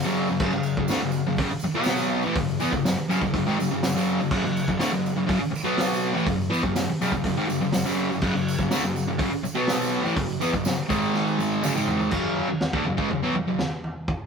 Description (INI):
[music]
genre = garage rock duo or trio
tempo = 123 BPM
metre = 4/4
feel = straight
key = F# minor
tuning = A4 = 442 Hz
[part]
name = fuzz guitar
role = riff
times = 0.0-13.6 s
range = F#2 to B3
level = -23 LUFS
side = equal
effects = distortion
[part]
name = tambourine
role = percussion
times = 0.0-12.1 s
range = none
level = -40 LUFS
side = right 4 dB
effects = none
[part]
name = vintage drum kit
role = drums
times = 0.4-14.2 s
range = crash cymbal, hi-hat, kick drum, snare drum, toms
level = -29 LUFS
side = equal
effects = none
[sound]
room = moderate stone room reverb, RT60 1.0 s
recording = rough rehearsal-room recording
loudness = -22 LUFS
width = side -6 dB against mid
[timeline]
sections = 0.0-12.1 A section; 12.1-14.3 B section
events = drum fill 11.1-12.1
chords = 0.0 F#5; 1.7 B5; 2.2 F#5; 5.7 B5; 6.1 F#5; 9.6 B5; 10.0 F#m; 10.9 G#5; 11.6 F#5